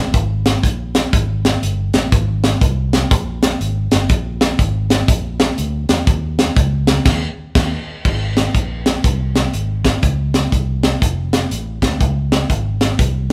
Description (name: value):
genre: uptempo gospel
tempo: 121 BPM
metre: 4/4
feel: swing 64% on 8ths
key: unclear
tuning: A4 = 440 Hz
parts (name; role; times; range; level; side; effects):
- fingered electric bass; bass; 0.0-13.3 s; F1 to Fb2; -22 LUFS; equal; none
- tight funk drum kit; drums; 0.1-13.3 s; crash cymbal, hi-hat, kick drum, snare drum; -18 LUFS; equal; none
room: moderate large studio reverb, RT60 1.3 s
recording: band playing live in one room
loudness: -17 LUFS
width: mono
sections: 0.0-8.0 A section; 8.0-13.3 B section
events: band accent 7.1-8.0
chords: none